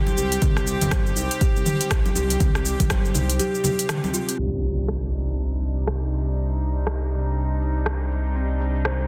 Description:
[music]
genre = afro house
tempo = 121 BPM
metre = 4/4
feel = swing 60% on 16ths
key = C minor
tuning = A4 = 442 Hz
[part]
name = rich studio string section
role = sustained chords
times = 0.0-9.1 s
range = C3 to G4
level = -33 LUFS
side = equal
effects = sidechain pumping, low-pass filter
[part]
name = kalimba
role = arpeggios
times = 0.0-4.4, 8.4-9.0 s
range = G3 to C5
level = -32 LUFS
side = equal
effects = vintage 12-bit sampler grit, sidechain pumping, tape echo
[part]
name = smooth synth bass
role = bass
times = 0.0-9.1 s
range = G1 to C2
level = -27 LUFS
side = equal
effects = sidechain pumping
[part]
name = afro-pop drum kit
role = drums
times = 0.1-9.1 s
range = hi-hat, rim click, shaker, toms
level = -29 LUFS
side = equal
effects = soft clipping on snare, low-pass filter on snare, low-pass filter on hats, low-pass filter on toms, low-pass filter on perc, low-pass filter on room
[part]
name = congas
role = percussion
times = 0.1-4.1 s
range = none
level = -32 LUFS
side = equal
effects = none
[part]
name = electronic kick drum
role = drums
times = 0.4-3.0 s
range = none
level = -24 LUFS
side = equal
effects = none
[part]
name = impact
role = sound effects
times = 4.4-6.4 s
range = none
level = -35 LUFS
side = equal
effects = none
[sound]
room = moderate recital hall reverb, RT60 1.3 s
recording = dense, heavily limited modern master, low-pass filter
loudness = -23 LUFS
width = mono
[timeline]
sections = 0.0-4.4 A section; 4.4-9.1 B section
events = impact 4.4-6.4; filter sweep on string section 4.4-9.1; filter sweep 4.4-9.1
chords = 0.0 C5; 4.4 Cm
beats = | 0.42 0.92 1.41 1.91 | 2.40 2.90 3.40 3.89 | 4.39 4.88 5.38 5.88 | 6.37 6.87 7.36 7.86 | 8.36 8.85

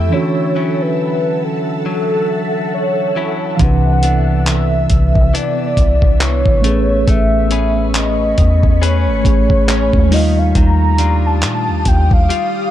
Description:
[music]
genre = contemporary R&B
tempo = 69 BPM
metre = 4/4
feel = swing 58% on 16ths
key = unclear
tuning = A4 = 439 Hz
[part]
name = warm velvety synth lead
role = melody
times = 0.0-12.7 s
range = A4 to Bb5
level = -19 LUFS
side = equal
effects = chorus
[part]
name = mellow tine electric piano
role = accompaniment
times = 0.0-12.7 s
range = C3 to F5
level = -19 LUFS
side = right 2 dB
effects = fast stereo tremolo
[part]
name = ethereal airy pad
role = sustained chords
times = 0.0-12.7 s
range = A3 to Eb6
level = -24 LUFS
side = left 1 dB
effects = ensemble chorus, built-in reverb, phaser, sidechain pumping
[part]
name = direct-recorded clean electric guitar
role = arpeggios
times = 0.0-12.7 s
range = C3 to B4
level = -23 LUFS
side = left 7 dB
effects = digital delay
[part]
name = soft 808-style bass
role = bass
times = 0.0-12.3 s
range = G#1 to Bb2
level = -15 LUFS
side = equal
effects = none
[part]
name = dusty soul sampler-style drum kit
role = drums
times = 3.6-12.5 s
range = handclaps, hi-hat, kick drum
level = -15 LUFS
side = equal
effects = none
[sound]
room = little or no reverb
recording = dark, warm production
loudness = -12 LUFS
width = side -12 dB against mid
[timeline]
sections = 0.0-3.6 A section; 3.6-12.7 B section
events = break 0.1-3.6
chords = 0.1 Dmaj9; 3.6 Cmaj9; 6.6 Amaj9; 10.1 Ebmaj9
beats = | 0.12 0.99 1.86 2.73 | 3.60 4.47 5.34 6.21 | 7.08 7.95 8.81 9.68 | 10.55 11.42 12.29

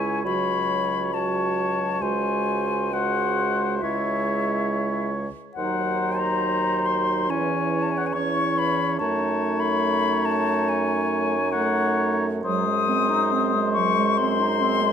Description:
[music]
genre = classical, slow romantic movement for wind quintet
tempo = 69 BPM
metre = 4/4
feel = uneven beats, rubato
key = C# minor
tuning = A4 = 441 Hz
[part]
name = silver concert flute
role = melody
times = 0.0-14.9 s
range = E5 to D#6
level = -26 LUFS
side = left 9 dB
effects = none
[part]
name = warm oboe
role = second line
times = 0.0-14.9 s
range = B#4 to C#5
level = -27 LUFS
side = left 2 dB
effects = none
[part]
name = clear clarinet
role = accompaniment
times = 0.0-14.9 s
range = F#3 to F#4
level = -29 LUFS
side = right 10 dB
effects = none
[part]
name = mellow French horn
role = accompaniment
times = 0.0-14.9 s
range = E3 to A3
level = -29 LUFS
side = right 2 dB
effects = none
[part]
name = mellow bassoon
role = bass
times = 0.0-14.9 s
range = C#2 to F#2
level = -29 LUFS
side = right 3 dB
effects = none
[sound]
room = moderate recital hall reverb, RT60 1.6 s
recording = close, detailed microphones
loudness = -21 LUFS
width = side -8 dB against mid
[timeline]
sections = 0.0-14.9 A section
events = none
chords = 0.2 F#m/C#; 2.0 G#7/C#; 3.8 C#m; 5.6 Cdim/Eb; 7.3 C#m/E; 9.0 D#m7b5/F#; 12.4 G#7/F#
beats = 0.25 1.13 | 2.02 2.92 3.83 4.72 | 5.57 6.43 7.29 8.15 | 8.99 9.84 10.68 11.52 | 12.44 13.32 14.18

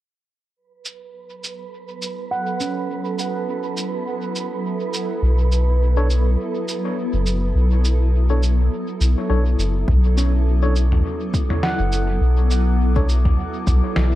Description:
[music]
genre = ambient dub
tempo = 103 BPM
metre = 4/4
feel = swing 56% on 16ths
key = B minor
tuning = A4 = 440 Hz
[part]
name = granular cloud pad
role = sustained chords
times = 1.6-14.2 s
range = F#3 to A4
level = -26 LUFS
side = equal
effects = built-in reverb
[part]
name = wind-like tuned noise texture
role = texture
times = 1.0-14.2 s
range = B4 to D6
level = -32 LUFS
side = right 5 dB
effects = built-in reverb
[part]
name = lo-fi sampler-style drum kit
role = drums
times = 0.9-14.1 s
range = cabasa, snare drum, toms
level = -26 LUFS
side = right 1 dB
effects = none
[part]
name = handpan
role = arpeggios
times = 2.3-4.3, 10.2-13.3 s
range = C#4 to F#5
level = -30 LUFS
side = right 3 dB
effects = low-pass filter, dub echo
[part]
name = soft dub sub bass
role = bass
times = 5.2-14.2 s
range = F#1 to B1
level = -16 LUFS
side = equal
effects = tube saturation
[part]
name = tine electric piano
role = stabs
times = 6.0-13.1 s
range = D4 to C#5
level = -30 LUFS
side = left 2 dB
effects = overdrive, medium stereo tremolo, dub echo
[part]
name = electronic kick drum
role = drums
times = 9.9-13.8 s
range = none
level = -22 LUFS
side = equal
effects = overdrive
[sound]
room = little or no reverb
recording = dark, warm production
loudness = -17 LUFS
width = side -14 dB against mid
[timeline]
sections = 0.6-9.9 A section; 9.9-14.2 B section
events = filter sweep on handpan 0.6-9.9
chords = 0.6 B7sus2; 9.9 Bm9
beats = | 0.56 1.15 1.73 2.31 | 2.89 3.48 4.06 4.64 | 5.22 5.81 6.39 6.97 | 7.55 8.14 8.72 9.30 | 9.88 10.47 11.05 11.63 | 12.21 12.80 13.38 13.96

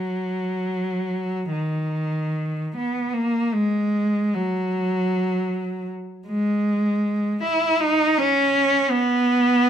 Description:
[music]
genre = classical, free, expressive piece for unaccompanied cello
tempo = free time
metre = none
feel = none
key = unclear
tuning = A4 = 439 Hz
[part]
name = rich cello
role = solo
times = 0.0-9.7 s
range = D#3 to E4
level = -20 LUFS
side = equal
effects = none
[sound]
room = moderate large studio reverb, RT60 1.2 s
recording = minimal, uncompressed stereo recording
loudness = -20 LUFS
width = side -9 dB against mid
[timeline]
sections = 0.0-2.0 A section; 2.0-9.7 B section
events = none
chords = none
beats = free time

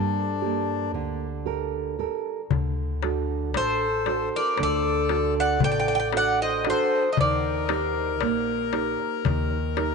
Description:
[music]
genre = greek folk, Greek bouzouki band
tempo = 116 BPM (eighths)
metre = 9/8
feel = straight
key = D phrygian dominant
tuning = A4 = 440 Hz
[part]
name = Greek bouzouki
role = melody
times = 0.0-9.9 s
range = A4 to G5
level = -26 LUFS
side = right 1 dB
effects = tape echo
[part]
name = accordion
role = second line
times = 0.0-9.9 s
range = D4 to D5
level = -28 LUFS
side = left 12 dB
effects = none
[part]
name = nylon-string guitar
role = accompaniment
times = 0.0-9.9 s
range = D3 to Bb4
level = -28 LUFS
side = right 12 dB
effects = none
[part]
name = upright bass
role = bass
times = 0.0-9.9 s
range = A1 to G2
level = -30 LUFS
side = left 1 dB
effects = none
[part]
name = darbuka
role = percussion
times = 2.5-9.9 s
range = none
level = -28 LUFS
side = left 11 dB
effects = none
[sound]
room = moderate plate reverb, RT60 3.9 s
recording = 1960s-style stereo with parts hard left and right, nothing above 10.6 kHz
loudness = -22 LUFS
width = side -4 dB against mid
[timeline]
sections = 0.0-9.9 A section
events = none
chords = 0.0 Gmadd9; 2.5 D; 7.2 Eb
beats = 0.43 0.95 1.47 1.99 | 2.50 3.02 3.54 4.06 4.58 5.10 5.62 6.14 6.66 | 7.17 7.69 8.21 8.73 9.25 9.77

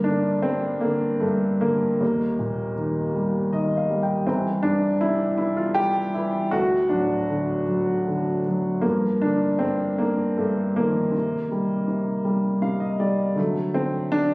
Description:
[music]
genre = classical, lyrical solo piano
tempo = 80 BPM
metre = 3/4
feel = rubato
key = G minor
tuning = A4 = 440 Hz
[part]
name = warm upright piano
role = solo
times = 0.0-14.3 s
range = C2 to G5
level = -21 LUFS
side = equal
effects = none
[sound]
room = moderate recital hall reverb, RT60 1.5 s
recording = recorded on a phone in the room, studio reverb, compression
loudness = -21 LUFS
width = side -25 dB against mid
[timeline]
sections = 0.0-14.3 A section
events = upright piano fill 3.2-4.3, 12.3-13.4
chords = 0.0 G5; 2.0 Eb; 4.3 C; 6.5 D; 8.8 G5; 11.1 Cm; 13.4 D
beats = 0.48 1.26 | 2.02 2.78 3.53 | 4.28 5.02 5.77 | 6.53 7.29 8.06 | 8.84 9.62 10.39 | 11.14 11.89 12.64 | 13.37 14.11

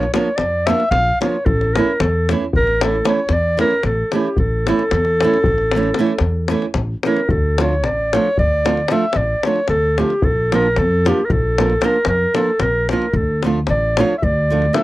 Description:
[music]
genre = balkan folk, Balkan wedding band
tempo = 226 BPM (eighths)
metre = 11/8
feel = straight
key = unclear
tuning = A4 = 445 Hz
[part]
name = mellow clarinet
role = melody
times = 0.0-14.8 s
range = G4 to F5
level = -18 LUFS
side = equal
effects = none
[part]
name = nylon-string guitar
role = accompaniment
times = 0.0-14.8 s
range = E3 to F4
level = -19 LUFS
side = right 4 dB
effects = none
[part]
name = upright bass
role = bass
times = 0.0-14.7 s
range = A1 to F2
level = -20 LUFS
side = equal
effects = none
[part]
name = davul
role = percussion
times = 0.0-14.8 s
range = none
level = -21 LUFS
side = left 3 dB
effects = none
[sound]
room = light reverb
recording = dry, close 1970s-style studio recording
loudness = -15 LUFS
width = side -17 dB against mid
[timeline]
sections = 0.0-7.3 A section; 7.3-14.8 B section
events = none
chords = 0.0 Bb; 1.5 A; 7.3 Dm; 10.2 Bb; 13.1 Dm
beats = 0.13 0.40 0.66 0.93 1.19 | 1.46 1.72 1.99 2.25 2.52 2.78 3.05 3.31 3.58 3.84 4.11 | 4.37 4.64 4.91 5.17 5.44 5.70 5.97 6.23 6.50 6.76 7.03 | 7.29 7.56 7.83 8.09 8.36 8.62 8.89 9.15 9.42 9.69 9.95 | 10.22 10.48 10.75 11.02 11.28 11.55 11.81 12.08 12.35 12.61 12.88 | 13.14 13.41 13.68 13.94 14.21 14.47 14.74

